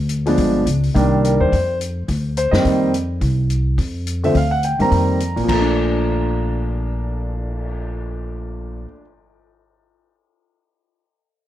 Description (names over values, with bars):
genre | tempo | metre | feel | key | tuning
jazz piano trio | 211 BPM | 4/4 | swing 60% on 8ths | Bb major | A4 = 440 Hz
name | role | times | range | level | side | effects
upright bass | bass | 0.0-8.8 s | G1 to F#2 | -20 LUFS | equal | none
vintage drum kit | drums | 0.1-7.7 s | crash cymbal, cymbal swell, hi-hat, kick drum, snare drum | -28 LUFS | left 2 dB | none
warm grand piano | melody | 0.3-9.0 s | Bb2 to A#5 | -18 LUFS | equal | none
room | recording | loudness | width
light reverb | dark, warm production, faint mains hum | -16 LUFS | side -13 dB against mid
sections
0.9-5.5 A section; 5.5-7.8 B section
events
none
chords
0.4 G7b9; 0.9 Cm9; 1.5 F5; 2.1 D7b9; 2.6 F9sus4; 3.2 N.C.; 3.8 F5; 4.3 Daug; 4.9 F9sus4; 5.5 Bbmaj7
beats
0.09 0.38 0.66 | 0.94 1.23 1.51 1.79 | 2.08 2.36 2.64 2.93 | 3.21 3.49 3.78 4.06 | 4.35 4.63 4.91 5.20 | 5.48 5.77 6.05 6.34 | 6.62 6.91 7.19 7.47